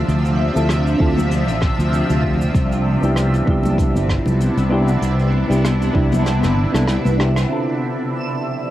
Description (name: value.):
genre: sunset chillout.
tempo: 97 BPM.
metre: 4/4.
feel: swing 54% on 16ths.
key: D dorian.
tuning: A4 = 441 Hz.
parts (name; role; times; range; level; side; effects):
shimmering ambient pad; sustained chords; 0.0-8.7 s; C3 to E5; -21 LUFS; equal; chorus, built-in reverb, phaser, cassette tape.
fretless electric bass; bass; 0.0-7.4 s; G1 to D2; -18 LUFS; equal; none.
soft brush drum kit; drums; 0.1-7.5 s; cabasa, hi-hat, rim click; -28 LUFS; right 1 dB; low-pass filter on hats, low-pass filter on snare, low-pass filter on perc, low-pass filter on room.
congas; percussion; 0.4-7.2 s; none; -27 LUFS; left 2 dB; none.
soft electric-piano-like synth keys; accompaniment; 0.5-8.7 s; D3 to A4; -24 LUFS; equal; chorus, auto-pan, vintage 12-bit sampler grit, cassette tape, analog delay.
electronic kick drum; drums; 1.0-6.1 s; none; -20 LUFS; equal; none.
twinkling granular texture; texture; 7.8-8.7 s; E6; -33 LUFS; left 1 dB; built-in reverb, cassette tape.
room: moderate studio reverb, RT60 0.5 s.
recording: home recording on cassette.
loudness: -15 LUFS.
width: side -14 dB against mid.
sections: 0.0-7.5 A section; 7.5-8.7 B section.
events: kick drops out 6.3-7.5; drum fill 6.3-7.5; band accent 7.3-7.7.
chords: 0.0 Dm9; 2.6 Cmaj9; 7.5 Dm9.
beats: | 0.08 0.70 1.31 1.93 | 2.55 3.17 3.79 4.41 | 5.03 5.64 6.26 6.88 | 7.50 8.12.